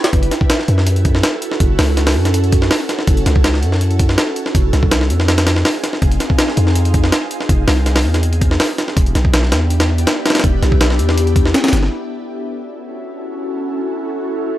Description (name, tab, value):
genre	drum and bass, jungle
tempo	163 BPM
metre	4/4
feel	straight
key	unclear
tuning	A4 = 439 Hz
part	ethereal airy pad	sustained chords	0.0-14.6 s	B3 to A4	-22 LUFS	equal	ensemble chorus, built-in reverb, phaser
part	breakbeat sampler-style drum kit	drums	0.0-11.9 s	hi-hat, kick drum, snare drum	-15 LUFS	equal	none
part	long sustained 808-style bass	bass	0.1-11.9 s	E1 to F#2	-15 LUFS	equal	none
room	digital ambience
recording	dry, gritty hardware recording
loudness	-13 LUFS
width	side -14 dB against mid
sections	0.0-11.9 A section; 11.9-14.6 B section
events	drop 0.0-11.9; filter sweep on ambient pad 11.9-14.6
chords	0.1 F#m7; 4.5 Fm7; 8.2 Em7; 11.9 F#m7